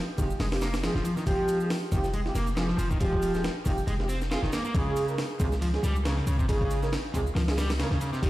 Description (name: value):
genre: breakbeat, breaks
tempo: 138 BPM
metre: 4/4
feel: swing 56% on 16ths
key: unclear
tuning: A4 = 440 Hz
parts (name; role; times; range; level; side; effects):
- overdriven semi-hollow guitar; riff; 0.2-8.3 s; C3 to F4; -31 LUFS; left 1 dB; tube saturation, low-pass filter, dub echo
- mellow brass ensemble; stabs; 0.2-8.3 s; G3 to Bb4; -32 LUFS; right 2 dB; dub echo
- warm 808-style bass; bass; 0.2-8.3 s; Eb1 to Db2; -29 LUFS; equal; none
- breakbeat sampler-style drum kit; drums; 0.2-8.3 s; hi-hat, kick drum, ride cymbal, snare drum; -31 LUFS; equal; studio reverb
- shaker; drums; 0.2-8.3 s; none; -49 LUFS; right 1 dB; studio reverb
room: light reverb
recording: played on a big sound system in a bare room, stone room reverb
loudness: -25 LUFS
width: side -16 dB against mid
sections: 0.0-8.3 A section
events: filter sweep on overdriven electric guitar 0.0-8.3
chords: 0.0 Fmadd9; 4.7 Db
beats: 0.40 0.83 | 1.27 1.70 2.14 2.57 | 3.01 3.44 3.88 4.31 | 4.75 5.18 5.62 6.05 | 6.48 6.92 7.35 7.79 | 8.22